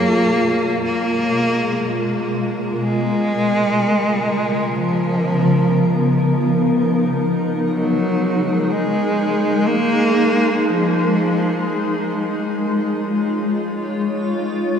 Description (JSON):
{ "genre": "ambient", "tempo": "free time", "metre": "none", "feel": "none", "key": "unclear", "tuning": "A4 = 439 Hz", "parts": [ { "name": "warm cello", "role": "melody", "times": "0.0-12.2 s", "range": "E#3 to A#3", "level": "-20 LUFS", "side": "equal", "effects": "shimmer reverb, diffuse ambient delay" }, { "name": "granular cloud pad", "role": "sustained chords", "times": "0.0-14.8 s", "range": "B2 to C#5", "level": "-19 LUFS", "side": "left 1 dB", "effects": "built-in reverb, shimmer reverb" }, { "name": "bell-like tine electric piano", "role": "arpeggios", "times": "0.0-2.7 s", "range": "G#4", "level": "-31 LUFS", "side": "right 2 dB", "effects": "none" } ], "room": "wet huge ambient reverb, RT60 7.7 s", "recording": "none", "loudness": "-16 LUFS", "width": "side -7 dB against mid", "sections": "0.0-14.8 A section", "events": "none", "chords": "0.0 G#m69; 2.8 C#13; 6.7 F#69; 10.7 D#sus2" }